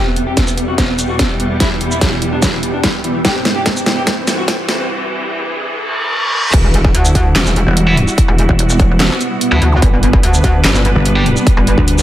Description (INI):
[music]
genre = heavy wobble dubstep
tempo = 146 BPM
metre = 4/4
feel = half-time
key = E minor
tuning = A4 = 440 Hz
[part]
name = bright studio string section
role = sustained chords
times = 0.0-12.0 s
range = C2 to B4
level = -22 LUFS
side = equal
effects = sidechain pumping, low-pass filter
[part]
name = riser, reverse cymbal, sub drop and zap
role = sound effects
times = 0.0-9.8 s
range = none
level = -21 LUFS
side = equal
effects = none
[part]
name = granular cloud pad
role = texture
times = 0.1-12.0 s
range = B3 to A5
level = -22 LUFS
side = right 1 dB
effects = built-in reverb, sidechain pumping
[part]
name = electric guitar at the edge of break-up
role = melody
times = 0.1-4.8 s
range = E3 to G4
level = -20 LUFS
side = equal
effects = dub echo
[part]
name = dubstep drum kit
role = drums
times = 0.2-12.0 s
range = crash cymbal, handclaps, hi-hat, shaker, snare drum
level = -17 LUFS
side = equal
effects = overdrive
[part]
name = electronic kick drum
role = drums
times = 0.4-11.9 s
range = none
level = -14 LUFS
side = equal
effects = overdrive
[part]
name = metallic wobble bass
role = bass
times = 6.5-11.8 s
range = E1 to D2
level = -12 LUFS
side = equal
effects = chorus, overdrive
[part]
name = pulsing pluck wobble bass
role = bass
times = 7.7-12.0 s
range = E1 to D2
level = -13 LUFS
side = equal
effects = chorus, overdrive
[part]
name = tight distorted guitar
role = stabs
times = 7.9-11.2 s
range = E3 to G4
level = -21 LUFS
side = right 1 dB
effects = distortion, dub echo
[sound]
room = digital ambience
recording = high-pass filter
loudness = -11 LUFS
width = side -13 dB against mid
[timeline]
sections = 0.0-6.5 A section; 6.5-12.0 B section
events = build-up 0.0-6.5; drum fill 0.0-4.9; riser 0.0-6.5; filter sweep 0.0-6.5; break 4.9-6.5; reverse cymbal 5.7-6.5; drop 6.5-12.0; impact 6.5-8.2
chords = 0.0 Em; 3.2 C; 6.5 Emadd9; 9.8 G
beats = 0.37 0.78 1.19 | 1.60 2.02 2.43 2.84 | 3.25 3.66 4.07 4.48 | 4.89 5.30 5.71 6.12 | 6.54 6.95 7.36 7.77 | 8.18 8.59 9.00 9.41 | 9.82 10.23 10.64 11.06 | 11.47 11.88